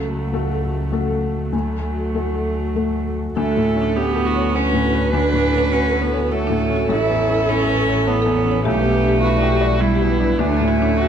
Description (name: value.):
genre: neoclassical piano and strings.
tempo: 102 BPM.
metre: 3/4.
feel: rubato.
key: D major.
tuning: A4 = 440 Hz.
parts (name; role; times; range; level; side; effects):
rich cello; second line; 0.0-11.1 s; F#3 to E4; -22 LUFS; right 5 dB; none.
dark viola; accompaniment; 0.0-11.1 s; A3 to B4; -24 LUFS; right 3 dB; none.
felt-muted upright piano; accompaniment; 0.0-11.1 s; A1 to D5; -24 LUFS; left 5 dB; none.
warm analog pad; sustained chords; 0.0-11.1 s; G3 to C#5; -31 LUFS; right 1 dB; none.
rich double bass; bass; 0.0-11.1 s; A1 to D2; -23 LUFS; left 1 dB; none.
buzzing marimba with medium hard mallets; arpeggios; 3.4-11.1 s; D4 to A5; -26 LUFS; left 7 dB; tape echo.
room: moderate recital hall reverb, RT60 1.7 s.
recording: dark, warm production.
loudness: -16 LUFS.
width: side -8 dB against mid.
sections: 0.0-3.4 A section; 3.4-11.1 B section.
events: none.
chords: 0.0 F#m/C#; 1.5 D; 3.4 Dmaj7; 6.9 Aadd9; 8.7 G6/B; 10.4 Dmaj7.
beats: 0.32 0.92 | 1.53 2.14 2.76 | 3.37 3.96 4.55 | 5.13 5.72 6.31 | 6.90 7.49 8.07 | 8.65 9.23 9.81 | 10.39 10.97.